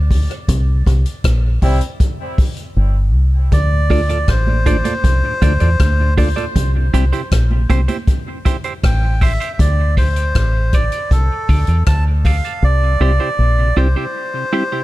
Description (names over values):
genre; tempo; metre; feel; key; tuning
dub reggae; 79 BPM; 4/4; straight; D minor; A4 = 440 Hz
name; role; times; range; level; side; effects
deep dub fingered electric bass; bass; 0.0-13.9 s; G1 to E2; -14 LUFS; equal; none
vintage drum kit; drums; 0.1-12.6 s; hi-hat, kick drum, rim click; -17 LUFS; equal; none
warm horn section; second line; 1.6-1.8 s; G3 to E4; -26 LUFS; equal; dub echo
melodica; melody; 3.5-14.8 s; A4 to A5; -22 LUFS; equal; dub echo
congas; percussion; 3.5-9.6 s; none; -27 LUFS; right 5 dB; high-pass filter on perc, dub echo
mellow tonewheel organ; accompaniment; 3.7-14.8 s; D2 to F4; -26 LUFS; left 2 dB; slow rotary speaker, high-pass filter, dub echo
semi-hollow electric guitar; accompaniment; 3.9-14.8 s; E4 to D5; -25 LUFS; right 6 dB; high-pass filter, dub echo
room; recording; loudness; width
small room ambience; dark, warm production; -13 LUFS; side -17 dB against mid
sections
0.0-3.5 A section; 3.5-14.8 B section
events
break 0.0-3.5; drums muted 2.8-3.5; filter sweep 6.6-12.6; part muted 9.6-14.8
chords
0.5 C5; 3.5 Dm; 6.6 C; 9.6 Dm; 12.6 C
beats
| 0.48 1.24 2.00 2.76 | 3.52 4.28 5.04 5.80 | 6.55 7.31 8.07 8.83 | 9.59 10.35 11.11 11.87 | 12.63 13.39 14.15